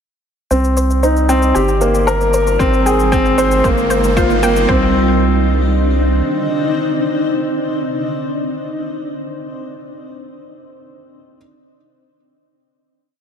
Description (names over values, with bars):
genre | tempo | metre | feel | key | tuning
piano and strings electronica | 115 BPM | 4/4 | straight | C minor | A4 = 440 Hz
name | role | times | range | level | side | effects
granular cloud pad | sustained chords | 1.2-8.6 s | G3 to D5 | -20 LUFS | equal | built-in reverb, sidechain pumping
analog pluck | arpeggios | 0.5-4.9 s | C5 to G5 | -22 LUFS | left 1 dB | chorus, sidechain pumping, ping-pong delay
warm grand piano | riff | 0.5-11.4 s | Bb3 to C5 | -16 LUFS | equal | ping-pong delay
round analog bass | bass | 0.5-6.2 s | G1 to C2 | -17 LUFS | equal | sidechain pumping
shaker | drums | 0.5-4.7 s | none | -31 LUFS | left 1 dB | overdrive, high-pass filter on perc, studio reverb
riser | sound effects | 1.8-4.7 s | none | -26 LUFS | right 3 dB | none
electronic kick drum | drums | 2.6-4.8 s | none | -20 LUFS | equal | overdrive, studio reverb
room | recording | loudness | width
moderate huge ambient reverb, RT60 4.5 s | none | -13 LUFS | side -7 dB against mid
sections
0.5-4.7 build; 4.7-8.9 final chord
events
build-up 0.5-4.7; filter sweep on synth arpeggio sound 0.5-4.7; riser 1.8-4.7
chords
0.5 Cmadd9; 1.6 Gm7; 2.6 Ab; 3.6 Ebadd9/G; 4.7 Cmadd9